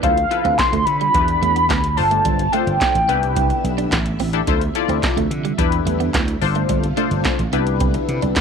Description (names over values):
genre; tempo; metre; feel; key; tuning
early-eighties boogie funk; 108 BPM; 4/4; straight; D dorian; A4 = 440 Hz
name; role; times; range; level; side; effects
warm velvety synth lead; melody; 0.0-4.2 s; F5 to C6; -18 LUFS; right 1 dB; chorus, slapback echo
funky polysynth comp; accompaniment; 0.0-8.4 s; D4 to D5; -23 LUFS; left 15 dB; chorus
string machine, full ensemble; sustained chords; 0.0-8.4 s; C3 to E5; -29 LUFS; equal; ensemble chorus
clean electric guitar; riff; 0.0-8.3 s; G3 to D4; -26 LUFS; right 17 dB; analog chorus
slap bass; bass; 0.0-8.4 s; G1 to D3; -22 LUFS; right 1 dB; none
electro analog drum machine; drums; 0.0-8.4 s; handclaps, hi-hat, kick drum, snare drum; -22 LUFS; right 1 dB; none
room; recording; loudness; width
little or no reverb; 1960s-style stereo with parts hard left and right; -16 LUFS; side -6 dB against mid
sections
0.0-8.4 A section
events
none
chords
0.0 Dm9; 1.1 Em7; 2.0 G9sus4; 3.1 Cmaj9; 4.5 Dm9; 5.6 Em7; 6.4 G9sus4; 7.5 Cmaj9